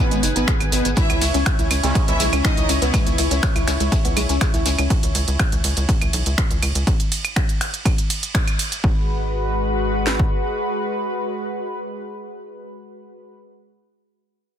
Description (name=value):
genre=melodic techno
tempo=122 BPM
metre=4/4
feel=straight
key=G# minor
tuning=A4 = 440 Hz
part: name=fat analog lead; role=melody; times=0.0-2.9 s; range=B3 to E4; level=-26 LUFS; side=right 1 dB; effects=analog chorus, sidechain pumping, digital delay
part: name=rich chamber violin section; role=second line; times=0.0-2.9 s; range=B4 to E5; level=-30 LUFS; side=left 1 dB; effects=sidechain pumping, dub echo
part: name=lush unison pad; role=sustained chords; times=0.0-13.3 s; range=G#3 to G#5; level=-26 LUFS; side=left 1 dB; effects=chorus, sidechain pumping
part: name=woody wave-folded pluck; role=arpeggios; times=0.0-4.8 s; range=G#3 to C#6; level=-27 LUFS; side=left 3 dB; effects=lush chorus, cassette tape, sidechain pumping, dub echo
part: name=synth brass stab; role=stabs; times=0.0-3.2 s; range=C#3 to C#4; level=-30 LUFS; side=right 2 dB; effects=chorus, phaser, sidechain pumping, dub echo
part: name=tight sequencer bass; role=bass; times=0.1-10.3 s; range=F#1 to C#2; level=-23 LUFS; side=equal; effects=sidechain pumping
part: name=techno drum kit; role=drums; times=0.1-8.8 s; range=claves, finger snaps, hi-hat, ride cymbal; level=-24 LUFS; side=right 3 dB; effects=sidechain pumping on hats, sidechain pumping on perc, soft clipping on snare, sidechain pumping on cymbals
part: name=shekere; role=percussion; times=0.1-4.9 s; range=none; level=-31 LUFS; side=left 4 dB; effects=none
part: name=techno drum kit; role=drums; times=0.5-10.3 s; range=kick drum, snare drum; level=-20 LUFS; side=equal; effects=none
room=digital ambience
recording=dense, heavily limited modern master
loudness=-17 LUFS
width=side -9 dB against mid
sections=0.0-8.8 A section; 8.8-12.8 B section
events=drop 0.0-8.8; band accent 8.3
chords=0.0 G#m7; 1.0 C#m7; 8.8 G#m7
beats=0.48 | 0.97 1.46 1.95 2.44 | 2.94 3.43 3.92 4.41 | 4.90 5.40 5.89 6.38 | 6.87 7.36 7.86 8.35 | 8.84 9.33 9.82 10.31 | 10.81 11.30 11.79 12.28